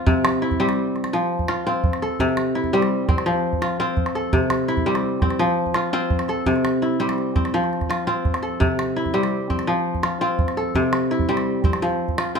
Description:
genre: west african traditional, West African string and xylophone music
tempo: 112 BPM (dotted quarters)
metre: 12/8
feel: straight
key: C major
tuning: A4 = 438 Hz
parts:
  - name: kora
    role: arpeggios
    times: 0.0-12.4 s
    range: C3 to A4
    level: -20 LUFS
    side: left 1 dB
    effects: none
  - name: calabash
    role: percussion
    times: 0.1-12.3 s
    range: none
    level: -24 LUFS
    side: right 2 dB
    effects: none
room: moderate recital hall reverb, RT60 1.3 s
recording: minimal, uncompressed stereo recording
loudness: -19 LUFS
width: side -6 dB against mid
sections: 0.1-12.4 A section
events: none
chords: 0.1 C; 1.1 F; 2.2 C; 3.3 F; 4.3 C; 5.4 F; 6.5 C; 7.5 F; 8.6 C; 9.7 F; 10.7 C; 11.8 F5

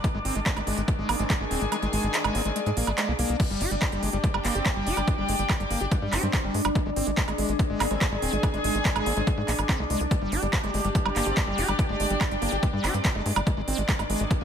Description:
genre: psychedelic trance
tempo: 143 BPM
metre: 4/4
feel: straight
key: unclear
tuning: A4 = 445 Hz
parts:
  - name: evolving wavetable pad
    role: sustained chords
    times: 0.0-14.4 s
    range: D4 to D5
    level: -32 LUFS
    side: equal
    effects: phaser, built-in reverb, sidechain pumping
  - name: screaming distorted acid line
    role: riff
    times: 0.0-14.4 s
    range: G3 to G4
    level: -32 LUFS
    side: left 1 dB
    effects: distortion, chorus, auto-pan, sidechain pumping, dub echo
  - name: big-room dance drum kit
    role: drums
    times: 0.0-14.4 s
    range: crash cymbal, handclaps, hi-hat, woodblock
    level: -30 LUFS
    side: right 3 dB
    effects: overdrive
  - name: electronic kick drum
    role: drums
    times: 0.0-14.4 s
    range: none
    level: -26 LUFS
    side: equal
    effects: overdrive
  - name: warm studio string section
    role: texture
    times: 0.0-14.4 s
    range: Eb3 to Ab5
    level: -33 LUFS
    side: equal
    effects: sidechain pumping
  - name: tight sequencer bass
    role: bass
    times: 0.1-14.4 s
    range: Eb1 to Ab2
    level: -30 LUFS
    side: equal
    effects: none
  - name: metallic wobble bass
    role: second line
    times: 1.2-13.2 s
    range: C4 to D4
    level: -42 LUFS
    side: left 4 dB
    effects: none
room: light reverb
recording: none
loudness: -23 LUFS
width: side -8 dB against mid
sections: 0.0-3.4 A section; 3.4-14.4 B section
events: kick drops out 1.7-3.4; drop 3.4-14.4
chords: 0.0 Ab5; 3.4 G5; 6.8 Ab5; 10.1 G5; 13.5 Ab5

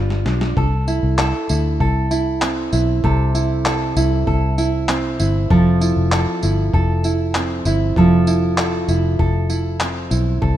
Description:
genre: acoustic pop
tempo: 98 BPM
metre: 4/4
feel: straight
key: C major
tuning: A4 = 440 Hz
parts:
  - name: nylon-string guitar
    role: accompaniment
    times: 0.0-10.6 s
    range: C3 to B4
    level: -19 LUFS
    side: right 2 dB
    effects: none
  - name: vintage muted fingered electric bass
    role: bass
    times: 0.0-10.6 s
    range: F1 to D2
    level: -19 LUFS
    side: left 1 dB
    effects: none
  - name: dusty soul sampler-style drum kit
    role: drums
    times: 0.1-10.6 s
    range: handclaps, kick drum, snare drum, tambourine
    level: -24 LUFS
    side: left 1 dB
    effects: none
room: light reverb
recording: rough home demo mix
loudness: -15 LUFS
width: side -12 dB against mid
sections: 0.6-10.6 A section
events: drum fill 0.0-0.6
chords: 0.0 G7; 0.6 C6; 5.5 Fmaj7

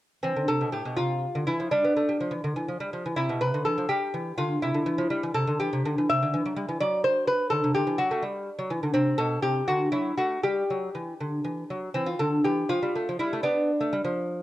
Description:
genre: classical, baroque-style dance for lute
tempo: 82 BPM (dotted quarters)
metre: 6/8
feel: rubato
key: C major, G major from 6.1 s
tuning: A4 = 445 Hz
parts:
  - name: lute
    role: solo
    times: 0.2-14.4 s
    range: A2 to E5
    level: -24 LUFS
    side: equal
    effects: none
room: moderate spring reverb, RT60 1.1 s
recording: dark, warm production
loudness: -24 LUFS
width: side -15 dB against mid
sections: 0.2-12.0 A section; 12.0-14.4 A section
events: none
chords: 0.2 C; 1.0 Dm7/C; 1.7 G7(no3); 3.2 C; 3.9 G5; 4.6 C; 6.1 Cadd9; 6.8 N.C.; 7.5 D7; 8.2 G5; 9.0 Am9; 9.7 D; 10.4 G5; 12.0 Dm11; 12.7 Fmaj9; 13.4 G7 (rootless)

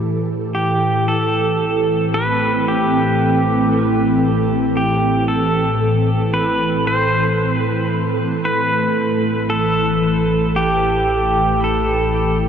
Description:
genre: ambient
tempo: 57 BPM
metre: 4/4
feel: straight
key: A minor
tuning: A4 = 440 Hz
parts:
  - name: ethereal airy pad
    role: sustained chords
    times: 0.0-12.5 s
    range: A2 to A4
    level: -17 LUFS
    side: equal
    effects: ensemble chorus, built-in reverb
  - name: muted felt-like synth keys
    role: arpeggios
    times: 0.0-12.5 s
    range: E3 to D6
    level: -33 LUFS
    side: left 1 dB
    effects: none
  - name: deep rumbling drone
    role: bass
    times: 1.7-12.5 s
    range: A1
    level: -31 LUFS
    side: equal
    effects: built-in reverb
  - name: pedal steel guitar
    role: melody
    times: 0.5-12.4 s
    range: G4 to C5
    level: -18 LUFS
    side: equal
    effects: diffuse ambient delay
room: wet huge ambient reverb, RT60 7.5 s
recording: none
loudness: -15 LUFS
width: side -8 dB against mid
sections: 0.0-12.5 A section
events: fade-in on synth drone 0.0-12.5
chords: 0.0 Amadd9; 8.4 Em/A

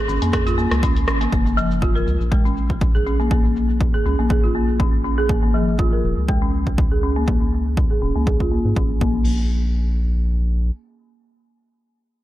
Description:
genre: afro house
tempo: 121 BPM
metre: 4/4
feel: swing 54% on 16ths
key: unclear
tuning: A4 = 441 Hz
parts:
  - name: folk marimba with medium hard mallets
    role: arpeggios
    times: 0.0-9.5 s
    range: F3 to Bb4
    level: -22 LUFS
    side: equal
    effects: sidechain pumping, low-pass filter, diffuse ambient delay
  - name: round analog bass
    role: bass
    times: 0.1-10.7 s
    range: Eb1 to Ab2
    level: -22 LUFS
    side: equal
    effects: sidechain pumping
  - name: house drum kit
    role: drums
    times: 0.1-9.1 s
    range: crash cymbal, hi-hat, rim click, shaker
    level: -27 LUFS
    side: left 1 dB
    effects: low-pass filter on hats, low-pass filter on perc, low-pass filter on snare, low-pass filter on cymbals
  - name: electronic kick drum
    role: drums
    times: 0.3-9.1 s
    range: none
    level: -20 LUFS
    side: equal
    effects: none
room: light reverb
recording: lossy compression artefacts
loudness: -17 LUFS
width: side -15 dB against mid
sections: 0.0-9.3 A section; 9.3-12.2 B section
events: filter sweep on drum 0.0-9.3; filter sweep on marimba 0.0-9.3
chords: 0.0 Db; 1.3 Gb; 5.3 Absus4; 9.0 N.C.

